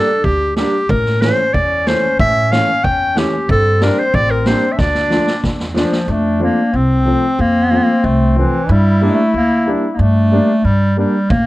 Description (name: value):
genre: klezmer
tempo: 92 BPM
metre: 2/4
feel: straight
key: unclear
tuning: A4 = 440 Hz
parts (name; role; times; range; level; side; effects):
- bright clarinet; melody; 0.0-11.5 s; E3 to G5; -15 LUFS; equal; none
- bright trombone; second line; 0.0-11.5 s; C4 to E4; -23 LUFS; left 2 dB; none
- dark upright piano; accompaniment; 0.0-11.1 s; E3 to D4; -19 LUFS; equal; none
- upright bass; bass; 0.2-11.5 s; A1 to A2; -17 LUFS; equal; none
- street-band drum kit; drums; 0.2-6.1, 11.3-11.4 s; kick drum, snare drum; -20 LUFS; equal; none
room: light reverb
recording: dark, warm production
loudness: -12 LUFS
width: side -17 dB against mid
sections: 0.0-6.1 A section; 6.1-11.5 A section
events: drum fill 4.8-6.1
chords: 0.0 Gm; 0.9 A; 3.5 Gm; 4.8 Dm; 6.1 F; 8.7 Gm